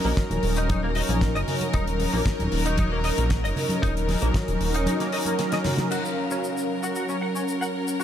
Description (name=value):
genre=nu-disco, nu disco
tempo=115 BPM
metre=4/4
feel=straight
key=unclear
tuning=A4 = 440 Hz
part: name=warm analog pad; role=accompaniment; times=0.0-8.0 s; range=F#3 to E#5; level=-27 LUFS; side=right 1 dB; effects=chorus, sidechain pumping, tape echo
part: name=warm studio string section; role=sustained chords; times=0.0-8.0 s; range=A#4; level=-32 LUFS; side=left 2 dB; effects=sidechain pumping
part: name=direct-recorded clean electric guitar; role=riff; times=0.0-8.0 s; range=A#3 to F#5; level=-32 LUFS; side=left 2 dB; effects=ensemble chorus, low-pass filter, tape echo
part: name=chorused synth bass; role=bass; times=0.0-4.9 s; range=D#1 to A#1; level=-26 LUFS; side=equal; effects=none
part: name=damped 70s drum kit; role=drums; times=0.2-8.0 s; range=crash cymbal, hi-hat, shaker, snare drum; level=-33 LUFS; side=left 3 dB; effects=small room ambience
part: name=kick drum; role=drums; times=0.2-4.5 s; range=none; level=-24 LUFS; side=equal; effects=small room ambience
part: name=congas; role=percussion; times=0.3-5.9 s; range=none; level=-32 LUFS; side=equal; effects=none
room=moderate huge ambient reverb, RT60 5.9 s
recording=dreamy mix soaked in reverb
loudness=-22 LUFS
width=side -10 dB against mid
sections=0.0-5.9 A section; 5.9-8.0 B section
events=drum fill 5.4-5.9; filter sweep on clean electric guitar 5.9-8.0; filter sweep on analog synth pad 5.9-8.0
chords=0.0 D#m7; 5.9 F#maj7